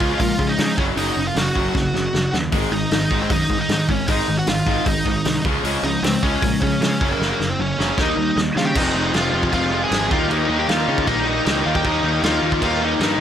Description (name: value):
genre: punk rock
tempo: 154 BPM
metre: 4/4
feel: straight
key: unclear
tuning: A4 = 440 Hz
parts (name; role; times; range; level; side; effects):
- high-gain lead guitar; melody; 0.0-13.2 s; Bb3 to Ab5; -23 LUFS; right 1 dB; distortion
- cranked stack guitar; riff; 0.0-13.2 s; F2 to Eb4; -24 LUFS; left 12 dB; overdrive
- distorted electric guitar; riff; 0.0-13.2 s; F2 to Ab4; -25 LUFS; right 10 dB; distortion
- fuzz picked electric bass; bass; 0.0-13.2 s; F1 to Db3; -25 LUFS; equal; overdrive
- loose indie drum kit; drums; 0.0-13.1 s; crash cymbal, hi-hat, kick drum, snare drum; -23 LUFS; equal; none
room: little or no reverb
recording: none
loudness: -17 LUFS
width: side -9 dB against mid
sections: 0.0-8.8 A section; 8.8-13.2 B section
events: drum fill 1.8-2.5, 7.2-8.8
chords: 0.0 Db; 0.8 Gb5; 2.5 Ab5; 5.4 Db; 7.0 Gb; 8.0 Eb; 8.8 Fm; 10.1 Eb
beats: 0.20 0.59 | 0.98 1.37 1.75 2.14 | 2.53 2.92 3.31 3.70 | 4.09 4.48 4.87 5.25 | 5.64 6.03 6.42 6.81 | 7.20 7.59 7.98 8.37 | 8.76 9.14 9.53 9.92 | 10.31 10.69 11.08 11.47 | 11.85 12.24 12.63 13.01